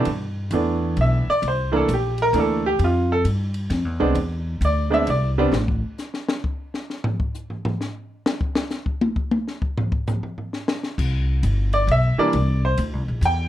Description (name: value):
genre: jazz piano trio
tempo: 132 BPM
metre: 3/4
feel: swing 65% on 8ths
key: C major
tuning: A4 = 440 Hz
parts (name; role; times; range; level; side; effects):
- clear baby grand piano; melody; 0.0-5.5, 11.7-13.5 s; E3 to G5; -20 LUFS; right 2 dB; none
- upright bass; bass; 0.0-5.8, 11.0-13.5 s; G1 to G2; -21 LUFS; equal; none
- compact cocktail drum kit; drums; 0.1-13.4 s; crash cymbal, hi-hat, kick drum, ride cymbal, snare drum, toms; -26 LUFS; left 1 dB; none
room: light reverb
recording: none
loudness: -20 LUFS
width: side -12 dB against mid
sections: 0.1-11.0 A section; 11.0-13.5 A section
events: grand piano solo 0.1-13.5; drum solo 5.5-11.0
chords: 0.1 G69; 1.4 C13; 2.8 Fsus2; 4.2 E7(no3); 5.5 N.C.; 11.0 Cmaj7; 12.3 Cadd9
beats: | 0.07 0.52 0.98 | 1.44 1.89 2.35 | 2.80 3.25 3.71 | 4.17 4.62 5.07 | 5.53 5.98 6.44 | 6.89 7.34 7.80 | 8.25 8.71 9.16 | 9.61 10.07 10.52 | 10.97 11.43 11.88 | 12.33 12.79 13.24